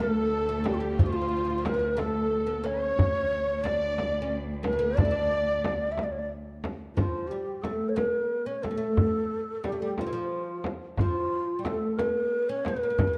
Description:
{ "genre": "Persian modal ensemble", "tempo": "60 BPM (dotted quarters)", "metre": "6/8", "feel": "straight", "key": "D avaz esfahan", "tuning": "A4 = 439 Hz", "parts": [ { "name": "breathy low ney", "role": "melody", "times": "0.0-13.2 s", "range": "F4 to E5", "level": "-31 LUFS", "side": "equal", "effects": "none" }, { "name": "oud", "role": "second line", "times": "0.0-13.2 s", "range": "E3 to E4", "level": "-35 LUFS", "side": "equal", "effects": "none" }, { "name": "warm studio violin section", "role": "second line", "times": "0.0-5.9 s", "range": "F4 to D5", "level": "-42 LUFS", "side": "equal", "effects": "none" }, { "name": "dark cello", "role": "drone", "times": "0.0-7.1 s", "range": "D2", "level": "-37 LUFS", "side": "equal", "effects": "none" }, { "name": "frame drum", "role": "percussion", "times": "0.7-13.1 s", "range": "none", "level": "-36 LUFS", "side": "equal", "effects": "none" }, { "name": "tombak", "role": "percussion", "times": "0.7-13.1 s", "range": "none", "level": "-29 LUFS", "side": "equal", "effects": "none" } ], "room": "moderate recital hall reverb, RT60 1.6 s", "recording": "dark, warm production, lossy compression artefacts", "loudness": "-28 LUFS", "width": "mono", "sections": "0.0-7.0 A section; 7.0-13.2 B section", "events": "none", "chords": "none", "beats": "| 0.98 1.98 | 2.98 3.98 | 4.98 5.98 | 6.98 7.98 | 8.98 9.98 | 10.98 11.99 | 12.99" }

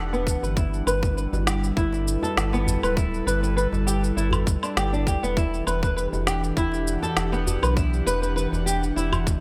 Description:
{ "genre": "organic downtempo", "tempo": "100 BPM", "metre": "4/4", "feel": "swing 53% on 16ths", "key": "E minor", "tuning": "A4 = 440 Hz", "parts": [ { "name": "airy breathy pad", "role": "sustained chords", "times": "0.0-9.4 s", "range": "E3 to F#5", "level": "-32 LUFS", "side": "equal", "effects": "chorus, sidechain pumping" }, { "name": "flamenco guitar", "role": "arpeggios", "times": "0.0-9.4 s", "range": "B3 to B4", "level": "-30 LUFS", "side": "equal", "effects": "lush chorus, low-pass filter, delay" }, { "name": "warm sub bass", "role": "bass", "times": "0.0-9.4 s", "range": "D1 to B1", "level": "-28 LUFS", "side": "equal", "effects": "sidechain pumping" }, { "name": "electronic shaker, woodblock and snare drum", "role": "drums", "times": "0.1-9.4 s", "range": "none", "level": "-31 LUFS", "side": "equal", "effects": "none" }, { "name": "electronic kick drum", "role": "drums", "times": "0.3-9.4 s", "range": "none", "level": "-26 LUFS", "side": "equal", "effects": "none" }, { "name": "djembe", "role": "percussion", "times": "1.3-9.4 s", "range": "none", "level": "-36 LUFS", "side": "equal", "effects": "none" } ], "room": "light reverb, digital ambience", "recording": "bright 1980s-style digital production", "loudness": "-24 LUFS", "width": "mono", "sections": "0.0-9.4 A section", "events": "filter sweep on nylon-string guitar 0.0-9.4", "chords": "0.0 Em9; 0.6 G69; 5.4 Em9", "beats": "| 0.57 1.17 1.77 2.37 | 2.97 3.57 4.17 4.77 | 5.37 5.97 6.57 7.17 | 7.77 8.37 8.97" }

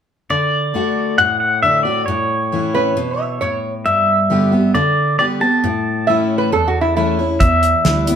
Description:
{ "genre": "honky-tonk and classic country", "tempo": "135 BPM", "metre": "4/4", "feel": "straight", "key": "D major", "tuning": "A4 = 441 Hz", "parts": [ { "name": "pedal steel guitar", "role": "melody", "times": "0.3-8.2 s", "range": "C#5 to A5", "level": "-16 LUFS", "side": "left 1 dB", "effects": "none" }, { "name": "picked steel-string acoustic guitar", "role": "accompaniment", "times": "0.3-8.2 s", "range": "E2 to G4", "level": "-18 LUFS", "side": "left 1 dB", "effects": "none" }, { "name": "lap resonator guitar", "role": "second line", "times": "2.7-7.3 s", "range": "E4 to E5", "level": "-18 LUFS", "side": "right 4 dB", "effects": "none" }, { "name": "vintage muted fingered electric bass", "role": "bass", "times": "7.4-8.2 s", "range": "D2 to E2", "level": "-18 LUFS", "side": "right 2 dB", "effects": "none" }, { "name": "damped 70s drum kit", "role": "drums", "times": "7.4-8.2 s", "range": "hi-hat, kick drum, snare drum", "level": "-17 LUFS", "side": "right 1 dB", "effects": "none" } ], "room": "wet studio reverb, RT60 0.8 s", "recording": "band playing live in one room", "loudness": "-14 LUFS", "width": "side -8 dB against mid", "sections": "0.3-8.2 A section", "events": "none", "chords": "0.3 D; 2.1 A; 3.9 G; 5.6 A; 7.4 Em", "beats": "| 0.30 0.75 1.19 1.64 | 2.08 2.53 2.97 3.42 | 3.86 4.30 4.75 5.19 | 5.64 6.08 6.52 6.97 | 7.41 7.85" }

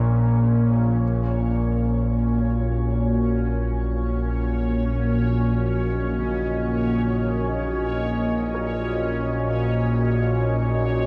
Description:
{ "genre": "dark ambient drone", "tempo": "free time", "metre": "none", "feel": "none", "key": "unclear", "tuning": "A4 = 441 Hz", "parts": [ { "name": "deep dark ambient pad", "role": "sustained chords", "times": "0.0-11.1 s", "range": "Bb3 to Eb5", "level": "-28 LUFS", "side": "equal", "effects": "chorus, built-in reverb, shimmer reverb" }, { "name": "analog drone", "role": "drone", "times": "0.0-11.1 s", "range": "Bb1 to Bb2", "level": "-24 LUFS", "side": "equal", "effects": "chorus" }, { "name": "bubbling stepped-filter texture", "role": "texture", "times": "0.0-11.1 s", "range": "Db4 to Db5", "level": "-34 LUFS", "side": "equal", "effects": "chorus, built-in reverb, shimmer reverb" }, { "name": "warm grand piano", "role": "arpeggios", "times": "6.2-11.1 s", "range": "Db3 to Bb4", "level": "-42 LUFS", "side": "equal", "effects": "none" } ], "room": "wet cathedral reverb, RT60 6.4 s", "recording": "none", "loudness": "-23 LUFS", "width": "mono", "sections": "0.0-11.1 A section", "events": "fade-in on synth texture 0.0-11.1", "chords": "0.0 Bbm; 1.0 Ebm/Bb", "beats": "free time" }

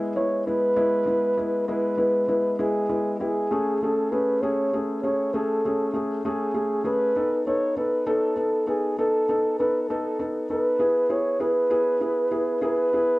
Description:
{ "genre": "pop", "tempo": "66 BPM (dotted quarters)", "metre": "6/8", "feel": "straight", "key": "E major", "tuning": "A4 = 440 Hz", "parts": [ { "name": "felt-muted upright piano", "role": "accompaniment", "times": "0.0-13.2 s", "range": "G#3 to A4", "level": "-26 LUFS", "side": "left 1 dB", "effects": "cassette tape" }, { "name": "breathy flugelhorn", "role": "melody", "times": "0.2-13.2 s", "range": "G#4 to C#5", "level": "-24 LUFS", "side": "equal", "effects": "cassette tape, analog delay" } ], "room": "wet studio reverb, RT60 0.6 s", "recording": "home recording on cassette", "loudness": "-21 LUFS", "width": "side -20 dB against mid", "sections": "0.0-13.2 A section", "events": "none", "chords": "0.0 E; 3.5 Amaj7; 7.1 B7; 10.8 E", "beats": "0.77 | 1.68 2.59 | 3.50 4.41 | 5.32 6.24 | 7.15 8.06 | 8.97 9.88 | 10.79 11.71 | 12.62" }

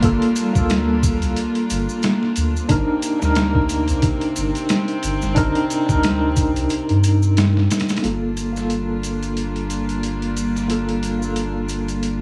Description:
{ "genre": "trip hop", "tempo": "90 BPM", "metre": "4/4", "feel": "swing 57% on 16ths", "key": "G minor", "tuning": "A4 = 441 Hz", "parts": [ { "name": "tine electric piano", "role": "accompaniment", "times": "0.0-12.2 s", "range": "Bb3 to Bb4", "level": "-24 LUFS", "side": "equal", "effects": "overdrive, tremolo, low-pass filter, tape echo" }, { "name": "warm chamber string section", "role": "sustained chords", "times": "0.0-12.2 s", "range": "C3 to F4", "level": "-28 LUFS", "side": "equal", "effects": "none" }, { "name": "soft dub sub bass", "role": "bass", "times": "0.0-12.2 s", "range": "G1 to G2", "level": "-24 LUFS", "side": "equal", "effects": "none" }, { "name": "boom bap sampler-style drum kit", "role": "drums", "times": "0.0-12.2 s", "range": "hi-hat, kick drum, snare drum", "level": "-24 LUFS", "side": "equal", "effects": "overdrive, high-pass filter on hats, vintage 12-bit sampler grit, high-pass filter on snare, high-pass filter on kick" }, { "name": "maracas", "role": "percussion", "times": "0.0-12.2 s", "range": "none", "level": "-37 LUFS", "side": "equal", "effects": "none" } ], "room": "light reverb", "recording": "vinyl crackle, small room ambience", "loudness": "-20 LUFS", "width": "mono", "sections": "0.0-8.0 A section; 8.0-12.2 B section", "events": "filter sweep on tine electric piano 8.0-12.2", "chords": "0.0 Gm7; 2.7 Cm7/G; 8.0 Gm7", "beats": "| 0.03 0.70 1.36 2.03 | 2.70 3.37 4.03 4.70 | 5.37 6.03 6.70 7.37 | 8.03 8.70 9.37 10.03 | 10.70 11.37 12.03" }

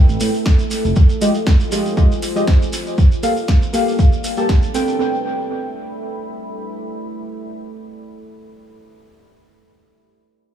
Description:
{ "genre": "deep house", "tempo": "119 BPM", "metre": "4/4", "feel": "swing 53% on 16ths", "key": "unclear", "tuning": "A4 = 440 Hz", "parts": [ { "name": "deep mellow chord stab", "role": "stabs", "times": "0.0-8.1 s", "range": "Ab3 to A5", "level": "-21 LUFS", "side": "equal", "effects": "chorus, sidechain pumping, analog delay" }, { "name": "deep dark ambient pad", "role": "texture", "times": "0.0-8.2 s", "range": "F4 to B5", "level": "-27 LUFS", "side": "equal", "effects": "chorus, built-in reverb, sidechain pumping" }, { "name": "smooth synth bass", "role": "bass", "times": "0.1-0.9 s", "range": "F1 to A2", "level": "-19 LUFS", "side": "right 1 dB", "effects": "sidechain pumping" }, { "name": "shekere", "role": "percussion", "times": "0.1-5.0 s", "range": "none", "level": "-32 LUFS", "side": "right 1 dB", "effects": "dub echo" }, { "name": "deep house drum kit", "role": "drums", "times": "0.2-4.9 s", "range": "hi-hat, snare drum", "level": "-28 LUFS", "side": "left 1 dB", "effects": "overdrive, dub echo" }, { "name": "electronic kick drum", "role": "drums", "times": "0.5-4.6 s", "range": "none", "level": "-13 LUFS", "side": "right 1 dB", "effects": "overdrive" } ], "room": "light reverb, digital ambience", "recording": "echo-heavy mix", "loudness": "-14 LUFS", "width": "side -10 dB against mid", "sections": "0.0-5.0 A section; 5.0-9.0 B section", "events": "none", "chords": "0.0 Am9; 0.7 Fm9; 3.0 Gm9; 5.0 Am9", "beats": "0.46 | 0.96 1.47 1.97 2.48 | 2.98 3.48 3.99 4.49 | 5.00 5.50 6.00 6.51 | 7.01 7.52 8.02" }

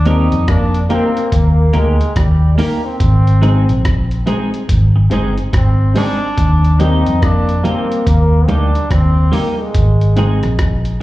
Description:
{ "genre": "roots reggae", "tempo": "71 BPM", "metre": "4/4", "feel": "swing 63% on 16ths", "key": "Eb major", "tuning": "A4 = 439 Hz", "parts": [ { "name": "bright trombone", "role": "melody", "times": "0.0-10.9 s", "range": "G3 to Eb4", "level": "-21 LUFS", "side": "equal", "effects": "slapback echo" }, { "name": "vintage muted fingered electric bass", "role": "bass", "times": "0.0-11.0 s", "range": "G1 to F2", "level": "-12 LUFS", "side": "equal", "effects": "none" }, { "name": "mellow trombone", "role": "second line", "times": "0.1-1.7, 6.8-8.4 s", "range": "Bb3 to C4", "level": "-20 LUFS", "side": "left 2 dB", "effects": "slapback echo, dub echo" }, { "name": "clean electric guitar", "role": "accompaniment", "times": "0.1-10.4 s", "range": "G3 to Bb4", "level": "-20 LUFS", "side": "right 2 dB", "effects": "analog chorus, slapback echo" }, { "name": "dark upright piano", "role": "stabs", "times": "0.1-11.0 s", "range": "Bb3 to C5", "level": "-26 LUFS", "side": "left 3 dB", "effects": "slapback echo" }, { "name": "lo-fi sampler-style drum kit", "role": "drums", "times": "0.1-11.0 s", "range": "hi-hat, kick drum, rim click", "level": "-17 LUFS", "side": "equal", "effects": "none" } ], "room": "studio reverb", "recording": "live gig heard through the venue's PA, club reverb", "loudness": "-11 LUFS", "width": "side -17 dB against mid", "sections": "0.0-11.0 A section", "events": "none", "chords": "0.0 Eb; 3.0 Ab; 6.4 Eb; 9.7 Ab", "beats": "0.48 1.32 2.16 | 3.00 3.85 4.69 5.53 | 6.38 7.22 8.06 8.90 | 9.74 10.59" }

